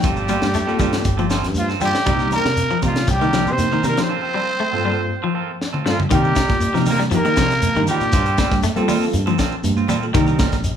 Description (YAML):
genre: afrobeat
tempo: 119 BPM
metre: 4/4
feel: straight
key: C dorian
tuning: A4 = 437 Hz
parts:
  - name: growling trumpet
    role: melody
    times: 0.0-8.6 s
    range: F4 to C5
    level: -22 LUFS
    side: right 1 dB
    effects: none
  - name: felt-muted upright piano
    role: second line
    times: 0.0-8.6 s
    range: F5 to C6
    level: -29 LUFS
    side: left 4 dB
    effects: none
  - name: raspy tenor saxophone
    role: second line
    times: 0.0-8.6 s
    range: F3 to C4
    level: -31 LUFS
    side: equal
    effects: none
  - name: bell-like tine electric piano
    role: accompaniment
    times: 0.0-10.4 s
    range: G2 to Bb4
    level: -26 LUFS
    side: equal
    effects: medium stereo tremolo
  - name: electric guitar at the edge of break-up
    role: arpeggios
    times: 0.0-10.3 s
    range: Eb3 to A3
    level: -24 LUFS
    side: left 4 dB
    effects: none
  - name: clean electric guitar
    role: stabs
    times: 0.0-10.6 s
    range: G3 to Bb4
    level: -27 LUFS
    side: right 6 dB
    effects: none
  - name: fingered electric bass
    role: bass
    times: 0.0-10.7 s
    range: G1 to G3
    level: -24 LUFS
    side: equal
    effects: none
  - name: tight funk drum kit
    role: drums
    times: 0.0-10.8 s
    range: hi-hat, kick drum, snare drum, toms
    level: -22 LUFS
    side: equal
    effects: none
  - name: shekere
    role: percussion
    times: 0.0-10.8 s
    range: none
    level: -27 LUFS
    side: left 1 dB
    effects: none
  - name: congas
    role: percussion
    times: 0.3-10.5 s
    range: none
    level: -27 LUFS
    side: right 6 dB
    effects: none
room: moderate large studio reverb, RT60 1.3 s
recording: band playing live in one room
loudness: -16 LUFS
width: side -8 dB against mid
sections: 0.0-6.1 A section; 6.1-10.8 B section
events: break 4.1-6.1; drum fill 5.6-6.1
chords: 0.0 Gm11; 2.1 Cm7; 4.1 Gm11; 6.1 Cm7; 8.1 Gm11; 10.1 Cm7